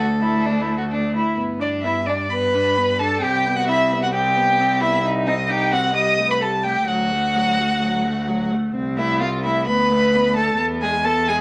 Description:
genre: quick classical-period movement for string quartet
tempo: 129 BPM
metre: 4/4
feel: straight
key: G major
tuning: A4 = 440 Hz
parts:
  - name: rich violin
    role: melody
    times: 0.0-11.4 s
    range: A4 to Eb6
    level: -24 LUFS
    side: equal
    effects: none
  - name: rich violin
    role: second line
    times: 0.0-11.4 s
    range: D4 to Eb5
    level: -25 LUFS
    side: equal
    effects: none
  - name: warm viola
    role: accompaniment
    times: 0.0-11.4 s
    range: F#3 to Eb4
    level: -30 LUFS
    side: equal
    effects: none
  - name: rich cello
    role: bass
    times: 0.0-11.4 s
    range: C2 to G2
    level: -26 LUFS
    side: equal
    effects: none
room: moderate studio reverb, RT60 0.7 s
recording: none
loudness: -20 LUFS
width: mono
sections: 0.0-1.4 A section; 1.4-11.4 B section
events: none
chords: 0.0 D5; 1.4 G; 3.2 C5; 5.0 Cm; 5.9 Cm6; 6.9 D; 8.7 Am/C; 9.7 Bm7/D; 10.6 E

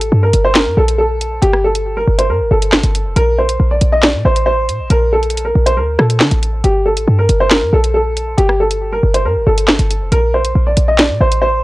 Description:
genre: hip hop, drill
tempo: 138 BPM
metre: 4/4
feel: half-time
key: G minor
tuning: A4 = 440 Hz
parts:
  - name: dark baby grand piano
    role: melody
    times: 0.0-11.6 s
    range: G4 to Eb5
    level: -15 LUFS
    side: equal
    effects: low-pass filter
  - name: short 808-style bass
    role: bass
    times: 0.0-11.6 s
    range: F1 to D3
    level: -14 LUFS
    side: equal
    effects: none
  - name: drill drum kit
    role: drums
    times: 0.0-11.4 s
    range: handclaps, hi-hat, rim click, snare drum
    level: -14 LUFS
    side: equal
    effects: vintage 12-bit sampler grit
room: little or no reverb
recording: dry, gritty hardware recording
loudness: -11 LUFS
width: side -19 dB against mid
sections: 0.0-11.6 A section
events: none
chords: 0.0 Gmadd9; 3.2 Bbsus2; 6.6 Gmadd9; 10.1 Bbadd9

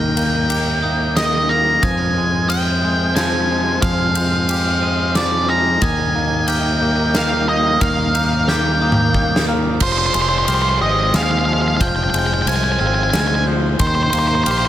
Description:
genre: post-rock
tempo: 90 BPM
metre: 3/4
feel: straight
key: F minor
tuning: A4 = 440 Hz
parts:
  - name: octave-fuzz lead guitar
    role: melody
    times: 0.0-14.7 s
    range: C5 to Bb5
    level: -19 LUFS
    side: right 1 dB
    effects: distortion, digital delay
  - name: warm studio string section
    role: sustained chords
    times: 0.0-14.7 s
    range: Eb3 to F5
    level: -28 LUFS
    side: left 1 dB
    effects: none
  - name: glockenspiel with brass mallets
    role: arpeggios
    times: 0.0-14.7 s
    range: Eb6 to Eb7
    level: -29 LUFS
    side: right 4 dB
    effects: digital delay
  - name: twangy electric guitar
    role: arpeggios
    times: 0.0-14.7 s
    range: Eb3 to G4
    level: -24 LUFS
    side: left 3 dB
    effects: digital delay
  - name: growling fingered electric bass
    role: bass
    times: 0.0-14.7 s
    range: F1 to F2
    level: -20 LUFS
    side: equal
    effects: overdrive
  - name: huge arena drum kit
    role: drums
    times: 0.2-14.6 s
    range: crash cymbal, kick drum, ride cymbal, snare drum, toms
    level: -21 LUFS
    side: equal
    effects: none
room: light reverb, studio ambience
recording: none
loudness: -14 LUFS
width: side -12 dB against mid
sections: 0.0-9.8 A section; 9.8-14.7 B section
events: drum fill 8.5-9.8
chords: 0.0 Eb; 1.8 Fmadd9; 5.8 Eb; 9.8 Fmadd9; 13.8 Eb

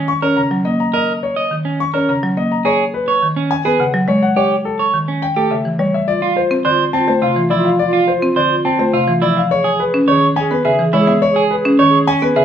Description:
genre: classical, minimalist pattern music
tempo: 105 BPM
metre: 3/4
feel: straight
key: unclear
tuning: A4 = 442 Hz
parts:
  - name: electric guitar at the edge of break-up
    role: arpeggios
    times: 0.0-12.4 s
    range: C4 to D#5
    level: -17 LUFS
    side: right 5 dB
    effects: none
  - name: bright concert grand piano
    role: melody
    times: 0.1-12.4 s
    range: A4 to C#6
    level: -18 LUFS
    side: left 5 dB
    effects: none
  - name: buzzing marimba with hard mallets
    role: accompaniment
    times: 0.2-12.4 s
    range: C3 to C#4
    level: -18 LUFS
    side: equal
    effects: none
  - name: mellow clarinet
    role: second line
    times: 6.1-12.4 s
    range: F4 to G#4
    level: -21 LUFS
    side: right 3 dB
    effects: none
  - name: xylophone with soft rubber mallets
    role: arpeggios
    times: 10.6-12.4 s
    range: E5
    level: -20 LUFS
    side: right 2 dB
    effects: none
room: wet large studio reverb, RT60 0.9 s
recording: none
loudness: -13 LUFS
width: side -9 dB against mid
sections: 0.0-6.1 A section; 6.1-12.4 B section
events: none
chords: 0.0 D#m; 2.6 G#m7; 4.4 A7; 6.1 Dm7; 9.5 Emaj7

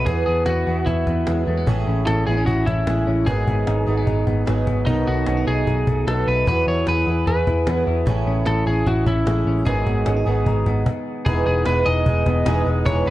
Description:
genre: jangly indie pop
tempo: 150 BPM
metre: 4/4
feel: straight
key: unclear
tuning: A4 = 443 Hz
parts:
  - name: lightly driven lead guitar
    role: melody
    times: 0.0-13.1 s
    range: D#4 to D#5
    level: -24 LUFS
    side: equal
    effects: tape echo
  - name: fingerpicked twelve-string acoustic guitar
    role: accompaniment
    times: 0.0-13.1 s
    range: G#2 to A4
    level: -25 LUFS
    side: right 3 dB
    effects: none
  - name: electric guitar through a small old amp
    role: arpeggios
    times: 0.0-13.1 s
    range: G#2 to G#4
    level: -26 LUFS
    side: left 2 dB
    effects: tape echo
  - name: vintage muted picked electric bass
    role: bass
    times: 0.0-13.1 s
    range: E1 to E2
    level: -21 LUFS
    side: equal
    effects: tube saturation
  - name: cajon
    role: drums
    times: 0.1-13.1 s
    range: none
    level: -25 LUFS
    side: equal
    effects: none
room: light reverb, small room ambience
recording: dark, warm production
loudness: -17 LUFS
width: side -15 dB against mid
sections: 0.0-11.3 A section; 11.3-13.1 B section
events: stop 10.9-11.3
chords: 0.1 Eadd9; 1.7 Amaj7; 3.3 G#m7; 4.9 B7; 6.5 Eadd9; 8.1 Amaj7; 9.7 G#m7; 11.3 Emaj7

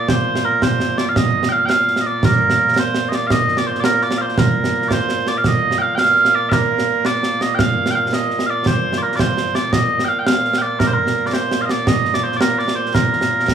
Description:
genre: scottish traditional, Scottish pipe music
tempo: 112 BPM (dotted quarters)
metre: 6/8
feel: straight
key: Bb major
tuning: A4 = 440 Hz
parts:
  - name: mellow small bagpipes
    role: melody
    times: 0.0-13.5 s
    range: Bb2 to G5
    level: -16 LUFS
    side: right 2 dB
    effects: none
  - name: concert snare drum and concert bass drum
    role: drums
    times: 0.1-13.5 s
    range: none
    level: -19 LUFS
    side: right 2 dB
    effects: none
room: wet large studio reverb, RT60 0.9 s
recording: band playing live in one room, small room ambience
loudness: -15 LUFS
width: side -8 dB against mid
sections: 0.0-5.4 A section; 5.4-13.5 A section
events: none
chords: none

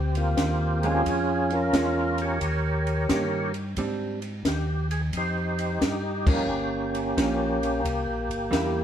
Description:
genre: soul jazz organ trio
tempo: 88 BPM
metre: 4/4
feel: swing 66% on 8ths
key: unclear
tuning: A4 = 439 Hz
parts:
  - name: percussive tonewheel organ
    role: melody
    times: 0.0-8.8 s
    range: Bb3 to Db5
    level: -26 LUFS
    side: right 1 dB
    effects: overdrive, chorus vibrato, slow rotary speaker
  - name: mellow tonewheel organ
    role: bass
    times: 0.0-8.8 s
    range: G1 to Ab2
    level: -29 LUFS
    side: equal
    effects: slow rotary speaker
  - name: compact cocktail drum kit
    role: drums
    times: 0.1-8.7 s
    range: crash cymbal, hi-hat, kick drum, ride cymbal, snare drum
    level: -28 LUFS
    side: equal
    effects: none
  - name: hollow-body jazz guitar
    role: accompaniment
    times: 0.8-8.8 s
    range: Eb3 to G4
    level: -31 LUFS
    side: right 3 dB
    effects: none
room: moderate stone room reverb, RT60 1.0 s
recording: band playing live in one room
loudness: -23 LUFS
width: side -9 dB against mid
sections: 0.0-8.8 A section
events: band accent 6.1-6.5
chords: 0.0 Eb69; 1.1 Bbm7; 2.4 Eb7; 3.8 Abmaj7#11; 6.5 Gm7b5; 7.8 C7

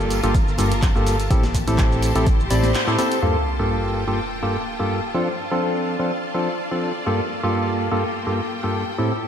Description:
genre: piano house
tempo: 125 BPM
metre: 4/4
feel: swing 54% on 16ths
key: G dorian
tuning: A4 = 440 Hz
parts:
  - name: percussive organ stab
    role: riff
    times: 0.0-9.1 s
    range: G2 to D5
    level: -21 LUFS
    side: equal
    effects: chorus, sidechain pumping, ping-pong delay
  - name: organ-like FM bass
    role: bass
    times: 0.0-2.7 s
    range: G1 to A1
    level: -24 LUFS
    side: equal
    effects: sidechain pumping
  - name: garage drum kit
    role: drums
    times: 0.0-3.3 s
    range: crash cymbal, handclaps, hi-hat, shaker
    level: -29 LUFS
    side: equal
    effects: low-pass filter on hats, small room ambience, low-pass filter on perc, low-pass filter on snare, low-pass filter on cymbals
  - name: bright studio string section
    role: texture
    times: 0.0-9.3 s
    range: Bb3 to A5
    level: -29 LUFS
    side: equal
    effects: sidechain pumping
  - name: breakbeat sampler-style drum kit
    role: drums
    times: 0.1-3.1 s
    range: hi-hat, snare drum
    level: -38 LUFS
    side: right 1 dB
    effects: none
  - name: tambourine and congas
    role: percussion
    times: 0.1-3.2 s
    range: none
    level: -33 LUFS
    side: left 4 dB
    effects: none
  - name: electronic kick drum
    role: drums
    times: 0.3-2.4 s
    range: none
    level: -20 LUFS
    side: equal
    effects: overdrive, small room ambience
  - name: sub drop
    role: sound effects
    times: 3.2-5.1 s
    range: none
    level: -28 LUFS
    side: equal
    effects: none
room: moderate lush hall reverb, RT60 1.6 s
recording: dreamy mix soaked in reverb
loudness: -19 LUFS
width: side -8 dB against mid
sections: 0.0-3.2 A section; 3.2-9.3 B section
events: band accent 2.7; impact 3.2-5.1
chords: 0.0 Gm9; 1.3 Am7; 3.2 Gm9; 5.1 F6; 7.1 Gm9

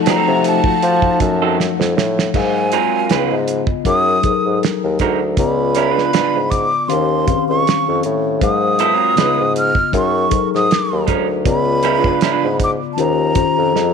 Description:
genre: R&B, neo-soul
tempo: 79 BPM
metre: 4/4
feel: swing 55% on 16ths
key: unclear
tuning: A4 = 440 Hz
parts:
  - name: breathy hollow jazz flute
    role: melody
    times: 0.0-13.9 s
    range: Ab5 to F6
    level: -18 LUFS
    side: right 2 dB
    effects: none
  - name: mellow tine electric piano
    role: accompaniment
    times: 0.0-13.9 s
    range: Db3 to Gb5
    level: -20 LUFS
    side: left 13 dB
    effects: medium stereo tremolo
  - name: soft string machine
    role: sustained chords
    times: 0.0-2.3 s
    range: F3 to Gb4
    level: -25 LUFS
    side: left 1 dB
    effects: ensemble chorus
  - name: electric guitar through a small old amp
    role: second line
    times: 0.1-12.5 s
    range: Gb3 to Cb5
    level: -20 LUFS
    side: right 13 dB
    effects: none
  - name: mellow bassoon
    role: bass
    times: 0.1-13.9 s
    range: Db2 to F3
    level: -19 LUFS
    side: right 1 dB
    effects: none
  - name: cloth-damped thuddy drum kit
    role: drums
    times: 0.1-13.9 s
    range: crash cymbal, hi-hat, kick drum, snare drum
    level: -20 LUFS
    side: right 4 dB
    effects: none
room: light reverb, small room ambience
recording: 1960s-style stereo with parts hard left and right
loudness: -13 LUFS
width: side -6 dB against mid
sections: 0.0-2.3 A section; 2.3-13.9 B section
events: drum fill 1.6-2.3, 13.7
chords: 0.0 F7b9; 2.3 Ab13; 3.1 Db9; 3.9 Gb69; 5.4 Db7b9; 6.9 Eb13; 8.4 Ab13; 9.2 Db9; 9.9 Gb69; 11.5 Db7b9; 13.0 Eb13

